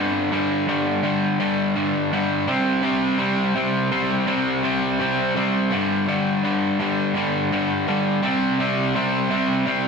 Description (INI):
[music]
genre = rock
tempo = 83 BPM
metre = 4/4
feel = straight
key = unclear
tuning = A4 = 441 Hz
[part]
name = crunchy overdriven guitar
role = solo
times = 0.0-9.9 s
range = G2 to C4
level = -19 LUFS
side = equal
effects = spring reverb, analog delay
[sound]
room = wet studio reverb, RT60 0.9 s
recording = dense, heavily limited modern master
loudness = -19 LUFS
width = side -5 dB against mid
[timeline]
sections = 0.0-9.9 A section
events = none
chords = 0.0 G5; 2.5 C5; 5.7 G5; 8.2 C5